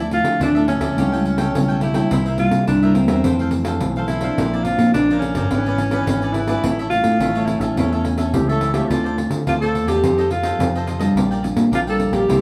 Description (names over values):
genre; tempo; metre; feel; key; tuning
samba and choro; 106 BPM; 4/4; straight; D minor; A4 = 440 Hz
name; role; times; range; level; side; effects
warm alto saxophone; melody; 0.0-12.4 s; C4 to A4; -23 LUFS; equal; tape echo
cavaquinho; accompaniment; 0.0-12.4 s; D4 to G5; -31 LUFS; equal; none
nylon-string guitar; accompaniment; 0.0-12.4 s; F2 to A4; -26 LUFS; equal; none
mellow fretless electric bass; bass; 0.0-12.4 s; G1 to D3; -25 LUFS; equal; none
pandeiro; percussion; 0.1-12.4 s; none; -26 LUFS; equal; none
warm clarinet; second line; 8.3-9.3 s; F4 to A4; -27 LUFS; equal; none
room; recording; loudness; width
wet studio ambience, RT60 0.5 s; heard from further back in the room, small room ambience; -19 LUFS; mono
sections
0.0-12.4 A section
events
none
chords
0.0 Dmadd9; 1.0 A7/C#; 2.1 C7; 3.2 Fmaj7; 4.4 Bbadd9; 5.5 E7/G#; 6.6 A; 8.9 Dm7; 10.0 F7; 11.2 Bb6